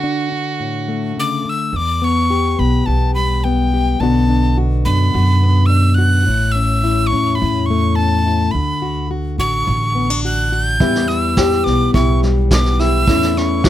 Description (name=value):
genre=acoustic folk duo or small band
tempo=106 BPM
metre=4/4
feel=straight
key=E dorian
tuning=A4 = 443 Hz
part: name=rich fiddle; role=second line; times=0.0-1.2 s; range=F#4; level=-24 LUFS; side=right 6 dB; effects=none
part: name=fingerpicked plugged-in steel-string acoustic guitar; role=accompaniment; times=0.0-13.7 s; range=E2 to G4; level=-19 LUFS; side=left 4 dB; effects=none
part: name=breathy bright mid whistle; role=melody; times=1.2-13.7 s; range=G5 to G6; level=-20 LUFS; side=equal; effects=none
part: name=upright bass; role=bass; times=1.7-13.7 s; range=A1 to F#2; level=-17 LUFS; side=right 1 dB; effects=none
part: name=clear upright piano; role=arpeggios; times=10.8-13.7 s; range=E4 to G4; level=-21 LUFS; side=right 4 dB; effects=none
part: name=vintage brush drum kit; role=drums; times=10.8-13.7 s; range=kick drum, snare drum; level=-18 LUFS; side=right 1 dB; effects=none
room=light reverb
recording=close, detailed microphones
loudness=-14 LUFS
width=side -12 dB against mid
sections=0.0-1.7 A section; 1.7-13.7 A section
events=fiddle solo 0.0-1.7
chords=0.0 D; 1.7 Em; 4.0 Bm; 6.3 A; 8.5 D; 10.8 Em; 13.1 A/E